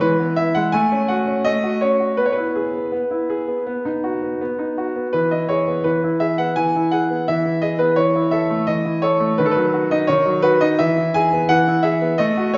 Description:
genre	classical-period piano sonatina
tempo	84 BPM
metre	4/4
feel	rubato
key	E major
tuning	A4 = 440 Hz
part	clear grand piano	solo	0.0-12.6 s	D#3 to G#5	-19 LUFS	equal	none
room	wet recital hall reverb, RT60 1.4 s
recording	heard from further back in the room, nothing above 7.5 kHz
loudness	-19 LUFS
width	mono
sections	0.0-12.6 A section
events	none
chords	0.0 E; 0.7 F#m/A; 2.2 E/B; 3.7 B; 5.1 E; 8.0 A5/E; 9.4 D#m7; 10.8 E

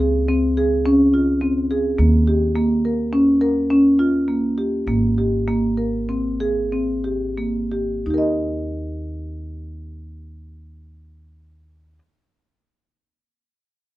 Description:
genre	contemporary instrumental, chamber music in an uneven meter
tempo	85-105 BPM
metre	5/4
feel	straight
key	Eb mixolydian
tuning	A4 = 440 Hz
part	marimba with soft mallets	arpeggios	0.0-12.1 s	Bb3 to Eb5	-18 LUFS	equal	none
part	upright bass	bass	0.0-12.0 s	Ab1 to Eb2	-25 LUFS	equal	none
room	light reverb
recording	none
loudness	-17 LUFS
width	side -16 dB against mid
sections	0.0-8.1 A section; 8.1-11.6 B section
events	slowing down 3.1-8.1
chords	0.0 Dbmaj7(no3); 2.0 Eb7; 4.9 Abmaj9; 8.1 Eb

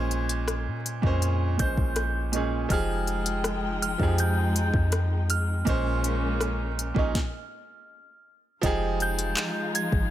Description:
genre	contemporary R&B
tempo	81 BPM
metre	4/4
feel	straight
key	F minor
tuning	A4 = 440 Hz
part	glassy synth bell	melody	0.0-10.1 s	F6 to Ab6	-34 LUFS	right 1 dB	chorus, ping-pong delay
part	bright baby grand piano	accompaniment	0.0-10.1 s	Bb2 to C5	-30 LUFS	right 4 dB	none
part	soft 808-style bass	bass	0.0-10.1 s	F1 to Bb2	-28 LUFS	left 1 dB	none
part	smooth R&B drum kit	drums	0.1-10.1 s	handclaps, hi-hat, kick drum, rim click, snare drum	-28 LUFS	left 1 dB	overdrive
part	dark chamber string section	sustained chords	2.7-10.1 s	F3 to G5	-32 LUFS	left 2 dB	sidechain pumping
room	digital ambience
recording	none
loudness	-24 LUFS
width	side -12 dB against mid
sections	0.0-8.6 A section; 8.6-10.1 B section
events	stop 7.1-8.6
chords	0.0 Bbm9; 2.7 Fm9; 5.7 Bbm9; 8.6 Fm9

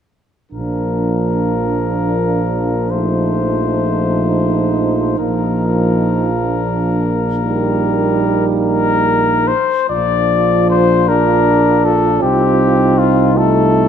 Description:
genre	classical, hymn-like piece for brass band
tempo	45-54 BPM (dotted quarters)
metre	6/8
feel	rubato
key	Bb major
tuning	A4 = 440 Hz
part	clear flugelhorn	melody	0.5-13.9 s	F4 to D5	-18 LUFS	left 6 dB	none
part	mellow French horn section	second line	0.5-13.9 s	D4 to F4	-20 LUFS	right 8 dB	none
part	clear euphonium	accompaniment	0.5-13.9 s	A3 to Eb4	-22 LUFS	left 2 dB	none
part	warm trombone	accompaniment	0.5-13.9 s	F3 to D4	-19 LUFS	right 2 dB	none
part	mellow tuba	bass	0.5-13.9 s	Bb1 to C2	-19 LUFS	equal	none
room	light reverb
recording	none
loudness	-12 LUFS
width	side -8 dB against mid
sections	0.5-9.9 A section; 9.9-13.9 B section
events	none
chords	0.5 Bb; 2.9 F7/Bb; 5.2 Bb; 7.4 Eb/Bb; 9.9 Bb; 12.2 F7/C

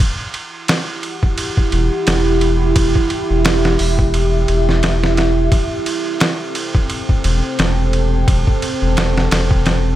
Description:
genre	trip hop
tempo	87 BPM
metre	4/4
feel	swing 57% on 16ths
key	E minor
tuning	A4 = 442 Hz
part	deep dark ambient pad	sustained chords	0.9-10.0 s	C4 to G5	-19 LUFS	right 2 dB	chorus, built-in reverb, vintage 12-bit sampler grit
part	trip hop sampler-style drum kit	drums	0.0-9.8 s	hi-hat, kick drum, ride cymbal, snare drum	-18 LUFS	equal	small room reverb
part	round analog bass	bass	1.7-10.0 s	E1	-16 LUFS	equal	none
room	little or no reverb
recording	none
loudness	-14 LUFS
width	side -13 dB against mid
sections	0.0-10.0 A section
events	kick drops out 9.7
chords	0.0 Emadd9; 5.5 Am7

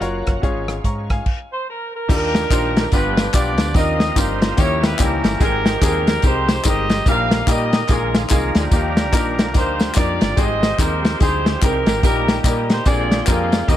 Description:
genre	uptempo gospel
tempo	145 BPM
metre	4/4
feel	swing 62% on 8ths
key	Eb major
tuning	A4 = 439 Hz
part	clear upright piano	accompaniment	0.0-13.8 s	G2 to Db6	-23 LUFS	left 4 dB	none
part	bright tonewheel organ	sustained chords	0.0-13.8 s	D3 to G5	-29 LUFS	right 4 dB	slow rotary speaker, overdrive, chorus vibrato
part	mellow French horn section	sustained chords	0.0-1.3 s	Gb3 to F5	-36 LUFS	left 1 dB	none
part	woody fretless electric bass	bass	0.0-13.8 s	Gb1 to Bb2	-24 LUFS	equal	none
part	warm soul drum kit	drums	0.0-13.8 s	crash cymbal, hi-hat, kick drum, rim click, snare drum	-18 LUFS	equal	none
part	mellow horn section	melody	1.5-13.8 s	Db4 to F5	-22 LUFS	right 1 dB	none
part	tambourine and handclaps	percussion	2.1-13.8 s	none	-30 LUFS	left 2 dB	none
room	small room ambience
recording	none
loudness	-15 LUFS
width	side -12 dB against mid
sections	0.0-2.1 A section; 2.1-13.8 B section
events	stop 1.3-2.1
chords	0.4 Db/Ab; 1.3 N.C.; 2.1 Ebmaj9; 2.9 G7; 3.8 Cm11/Eb; 4.6 Eb7b9; 5.4 Abmaj7; 7.1 Eb/Bb; 7.9 Bb7sus4; 8.7 Ebmaj9; 10.4 Abmaj7; 12.0 Eb/Bb; 12.9 Bb13

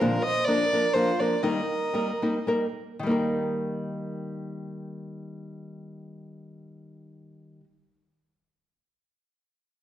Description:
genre	mexican folk, mariachi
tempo	108-130 BPM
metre	3/4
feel	swing 53% on 8ths, rubato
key	Eb major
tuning	A4 = 440 Hz
part	warm violin	melody	0.0-2.5 s	Bb4 to Eb5	-27 LUFS	equal	none
part	dark trumpet	second line	0.0-2.5 s	F4 to C5	-30 LUFS	right 4 dB	none
part	nylon-string guitar	accompaniment	0.0-7.7 s	Bb2 to Bb4	-28 LUFS	left 1 dB	none
room	wet recital hall reverb, RT60 1.3 s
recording	none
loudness	-24 LUFS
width	side -12 dB against mid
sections	0.0-3.0 A section; 3.0-6.3 B section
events	slowing down 0.0-3.0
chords	0.0 Bb; 1.4 Eb

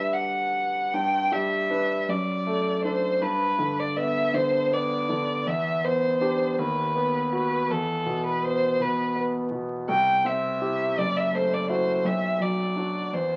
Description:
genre	classical, romantic duo for violin and grand piano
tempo	54 BPM (dotted quarters)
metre	6/8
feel	uneven beats, rubato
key	G major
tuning	A4 = 439 Hz
part	rich violin	melody	0.0-13.4 s	A4 to G5	-27 LUFS	equal	none
part	clear concert grand piano	accompaniment	0.0-13.4 s	F#1 to B4	-30 LUFS	equal	none
room	light reverb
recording	very old 78 rpm record, vinyl crackle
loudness	-25 LUFS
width	mono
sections	0.9-13.4 A section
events	none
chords	0.0 G; 2.1 D/F#; 3.2 G; 5.5 Em7; 6.6 B/D#; 7.7 E5; 9.9 C; 11.0 F#m7b5; 12.0 Bm

